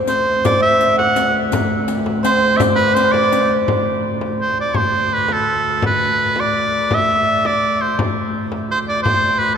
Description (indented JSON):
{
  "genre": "medieval dance",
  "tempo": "112 BPM (dotted quarters)",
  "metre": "6/8",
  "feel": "straight",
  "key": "D mixolydian",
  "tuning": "A4 = 436 Hz",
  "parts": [
    { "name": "hammered dulcimer", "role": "second line", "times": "0.0-5.6 s", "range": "B4 to F#5", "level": "-20 LUFS", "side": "right 1 dB", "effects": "none" },
    { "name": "dark viola da gamba", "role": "drone", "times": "0.0-9.6 s", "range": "D2", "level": "-24 LUFS", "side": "left 2 dB", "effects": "none" },
    { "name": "bright shawm", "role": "melody", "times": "0.1-9.6 s", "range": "A4 to F#5", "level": "-17 LUFS", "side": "right 1 dB", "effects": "none" },
    { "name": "riq", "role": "percussion", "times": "0.1-3.5 s", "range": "none", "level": "-27 LUFS", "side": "left 4 dB", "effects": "none" },
    { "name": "frame drum", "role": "percussion", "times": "0.5-9.5 s", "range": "none", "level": "-24 LUFS", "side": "left 2 dB", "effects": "none" }
  ],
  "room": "wet cathedral reverb, RT60 4.8 s",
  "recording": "recorded in a church or concert hall",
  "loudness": "-14 LUFS",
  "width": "side -7 dB against mid",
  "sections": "0.0-3.7 A section; 3.7-9.6 B section",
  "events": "none",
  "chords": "none"
}